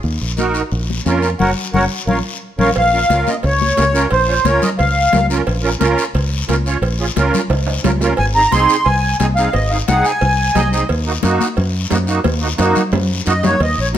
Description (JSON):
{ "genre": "latin, cumbia", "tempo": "177 BPM", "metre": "4/4", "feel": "straight", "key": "Bb minor", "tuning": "A4 = 440 Hz", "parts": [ { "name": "fingered electric bass", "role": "bass", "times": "0.0-14.0 s", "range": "Gb1 to Gb2", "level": "-18 LUFS", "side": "equal", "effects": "none" }, { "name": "guiro", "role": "percussion", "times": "0.0-14.0 s", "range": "none", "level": "-27 LUFS", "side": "left 7 dB", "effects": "none" }, { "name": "musette accordion", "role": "accompaniment", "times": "0.4-14.0 s", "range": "Bb3 to Eb5", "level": "-20 LUFS", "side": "right 4 dB", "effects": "none" }, { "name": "congas", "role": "percussion", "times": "0.4-14.0 s", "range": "none", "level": "-22 LUFS", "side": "left 4 dB", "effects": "none" }, { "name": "accordion", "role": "melody", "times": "1.4-5.3, 8.2-10.7, 13.3-13.9 s", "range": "Bb4 to C6", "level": "-15 LUFS", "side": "equal", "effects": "light tremolo tuning" }, { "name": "cowbell and timbales", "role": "percussion", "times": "2.8-14.0 s", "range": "none", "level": "-25 LUFS", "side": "right 5 dB", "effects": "none" } ], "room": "moderate large studio reverb, RT60 1.2 s", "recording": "none", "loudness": "-13 LUFS", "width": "side -10 dB against mid", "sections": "0.0-2.8 A section; 2.8-13.6 B section", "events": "drum fill 1.4-2.8, 7.5-8.2, 12.3-13.6; band accent 1.4-2.8; accordion fill 10.4-10.9", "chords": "0.0 Ebm; 0.7 Bbm; 1.4 Gb; 2.1 Bbm; 8.2 Ab; 10.9 Ebm" }